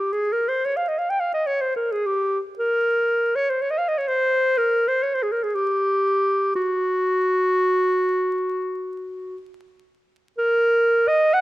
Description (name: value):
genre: classical, free, expressive piece for unaccompanied clarinet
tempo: 58-66 BPM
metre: 4/4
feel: rubato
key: unclear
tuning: A4 = 440 Hz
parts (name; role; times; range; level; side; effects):
- clear clarinet; solo; 0.0-11.4 s; Gb4 to G5; -19 LUFS; equal; none
room: light reverb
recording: close, detailed microphones, vinyl crackle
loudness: -19 LUFS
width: side -17 dB against mid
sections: 0.0-11.4 A section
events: none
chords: none